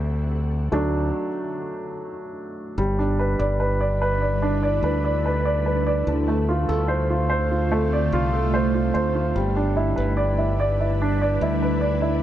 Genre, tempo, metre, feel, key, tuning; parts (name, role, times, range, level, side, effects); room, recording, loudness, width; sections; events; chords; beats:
pop; 73 BPM; 4/4; straight; G mixolydian; A4 = 440 Hz
ethereal airy pad; sustained chords; 0.0-12.2 s; D3 to F#5; -29 LUFS; right 1 dB; ensemble chorus, built-in reverb, phaser
modern bright fingered electric bass; bass; 0.0-12.2 s; G1 to D2; -24 LUFS; equal
warm upright piano; accompaniment; 0.7-12.2 s; D3 to D5; -23 LUFS; right 1 dB
light reverb, small room ambience; dark, warm production; -20 LUFS; side -12 dB against mid
0.0-2.8 A section; 2.8-12.2 B section
upright piano solo 0.0-2.8; stop 1.1-2.8
0.0 D; 2.8 G6; 6.1 Dm7; 9.4 G6
0.31 1.13 1.96 | 2.78 3.60 4.42 5.24 | 6.06 6.89 7.71 8.53 | 9.35 10.17 11.00 11.82